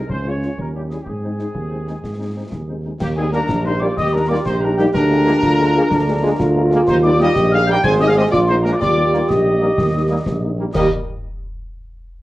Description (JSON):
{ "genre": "military-style march for wind band", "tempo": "124 BPM (dotted quarters)", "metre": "6/8", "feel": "straight", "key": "Ab major, Eb major from 3.0 s", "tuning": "A4 = 440 Hz", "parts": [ { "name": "mellow trumpet section", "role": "melody", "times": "0.0-10.9 s", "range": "G4 to Ab5", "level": "-23 LUFS", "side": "equal", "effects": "none" }, { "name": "warm euphonium", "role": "second line", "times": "0.0-10.5 s", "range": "C4 to Ab4", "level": "-21 LUFS", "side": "right 1 dB", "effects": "none" }, { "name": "warm tuba", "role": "bass", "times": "0.1-10.9 s", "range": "Ab1 to Ab2", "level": "-20 LUFS", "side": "right 1 dB", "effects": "none" }, { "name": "concert bass drum, concert snare drum and clash cymbals", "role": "drums", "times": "0.1-10.9 s", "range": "none", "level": "-27 LUFS", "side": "left 1 dB", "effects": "none" }, { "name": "dark woodwind section", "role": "second line", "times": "0.3-10.9 s", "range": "Bb3 to Db5", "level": "-23 LUFS", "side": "left 1 dB", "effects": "none" }, { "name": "mellow French horn section", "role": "accompaniment", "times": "0.3-10.9 s", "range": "Eb3 to F4", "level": "-24 LUFS", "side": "left 2 dB", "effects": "none" }, { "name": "mellow wooden piccolo", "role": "second line", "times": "3.0-10.9 s", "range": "G5 to Ab6", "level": "-25 LUFS", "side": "left 2 dB", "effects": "none" }, { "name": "warm trombone section", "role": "sustained chords", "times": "3.3-10.9 s", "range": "G3 to C4", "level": "-24 LUFS", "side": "right 1 dB", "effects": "none" } ], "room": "wet large studio reverb, RT60 0.9 s", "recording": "worn, warbling old tape, cassette tape, warbly pitch drift", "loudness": "-14 LUFS", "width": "side -17 dB against mid", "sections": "0.0-3.0 A section; 3.0-10.7 B section", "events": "none", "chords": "0.1 Db; 0.6 Eb7b9; 1.1 Ab; 3.0 Eb; 4.9 Bb7/D; 6.9 Eb; 7.8 Ab; 8.3 Bb5; 8.8 Eb" }